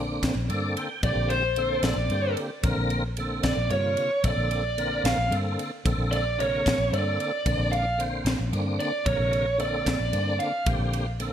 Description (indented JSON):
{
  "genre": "electric jazz fusion",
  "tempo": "75 BPM (dotted quarters)",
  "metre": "6/8",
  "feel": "straight",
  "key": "Bb major",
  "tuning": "A4 = 440 Hz",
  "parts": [
    { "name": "tonewheel organ", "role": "accompaniment", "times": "0.0-11.3 s", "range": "C3 to G5", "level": "-31 LUFS", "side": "equal", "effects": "slow rotary speaker, overdrive, chorus vibrato" },
    { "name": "vintage muted fingered electric bass", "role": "bass", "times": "0.0-11.3 s", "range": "Bb1 to G2", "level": "-28 LUFS", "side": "equal", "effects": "none" },
    { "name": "crisp fusion drum kit", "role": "drums", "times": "0.2-11.3 s", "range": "kick drum, ride cymbal, snare drum", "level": "-30 LUFS", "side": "equal", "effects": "gated reverb" },
    { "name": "bluesy overdriven lead guitar", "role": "melody", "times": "1.0-10.7 s", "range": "C5 to F5", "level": "-27 LUFS", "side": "right 1 dB", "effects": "distortion, digital delay" }
  ],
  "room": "light reverb",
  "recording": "bright 1980s-style digital production",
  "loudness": "-23 LUFS",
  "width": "side -10 dB against mid",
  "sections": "0.0-11.3 A section",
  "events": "lead electric guitar solo 0.0-11.3; tonewheel organ fill 0.2-1.0",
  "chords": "0.0 Bbmaj9"
}